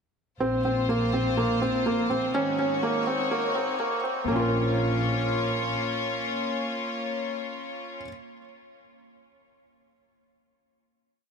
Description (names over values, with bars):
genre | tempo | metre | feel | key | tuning
piano and strings electronica | 124 BPM | 4/4 | straight | Bb minor | A4 = 437 Hz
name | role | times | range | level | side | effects
rich studio string section | sustained chords | 0.4-8.0 s | Ab3 to Db5 | -30 LUFS | left 3 dB | none
felt-muted upright piano | riff | 0.4-8.1 s | Bb3 to Bb4 | -27 LUFS | right 1 dB | tape echo
dark studio double bass section | bass | 0.4-5.7 s | Ab1 to Bb1 | -31 LUFS | equal | none
room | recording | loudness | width
wet huge ambient reverb, RT60 4.6 s | high-pass filter | -24 LUFS | side -6 dB against mid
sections
0.4-4.3 build; 4.3-8.2 final chord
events
build-up 0.4-4.3; filter sweep 0.4-4.3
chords
0.4 Bbsus2; 2.3 Ab7sus4; 4.3 Bbm